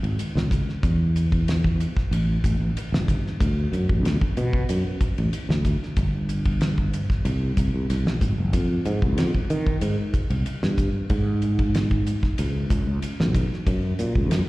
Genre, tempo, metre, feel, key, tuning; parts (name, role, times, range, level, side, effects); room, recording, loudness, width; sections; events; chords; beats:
electric jazz fusion; 94 BPM; 4/4; straight; A4 = 440 Hz
sustaining fretless electric bass; bass; 0.0-14.4 s; Gb1 to Eb3; -22 LUFS; equal
damped 70s drum kit; drums; 0.0-14.5 s; hi-hat, kick drum, ride cymbal, snare drum; -25 LUFS; equal
little or no reverb; live gig heard through the venue's PA, recital hall reverb; -21 LUFS; side -20 dB against mid
0.0-14.5 A section
0.18 | 0.83 1.47 2.11 2.76 | 3.40 4.04 4.68 5.33 | 5.97 6.61 7.25 7.89 | 8.54 9.18 9.82 10.46 | 11.10 11.74 12.38 13.02 | 13.66 14.31